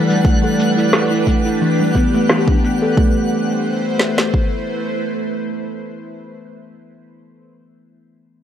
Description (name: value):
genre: organic downtempo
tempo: 88 BPM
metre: 4/4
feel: swing 54% on 16ths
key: A dorian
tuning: A4 = 438 Hz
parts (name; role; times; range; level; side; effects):
- bowed-like drone; sustained chords; 0.0-6.1 s; G3 to C5; -22 LUFS; equal; built-in reverb, phaser, sidechain pumping
- twinkling granular texture; texture; 0.0-3.0 s; F#5; -28 LUFS; equal; built-in reverb
- kalimba; arpeggios; 0.1-3.3 s; E3 to A4; -18 LUFS; equal; low-pass filter, analog delay
- electronic shaker and snare drum; drums; 0.1-2.9 s; none; -18 LUFS; equal; overdrive, low-pass filter on perc, low-pass filter on snare, low-pass filter on room
- afro-pop drum kit; drums; 0.2-4.5 s; kick drum, snare drum; -16 LUFS; equal; overdrive
room: digital ambience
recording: dry, gritty hardware recording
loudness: -14 LUFS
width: side -9 dB against mid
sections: 0.0-3.0 A section; 3.0-5.7 B section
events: filter sweep on drum 0.0-3.0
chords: 0.0 Gmaj7; 3.0 Am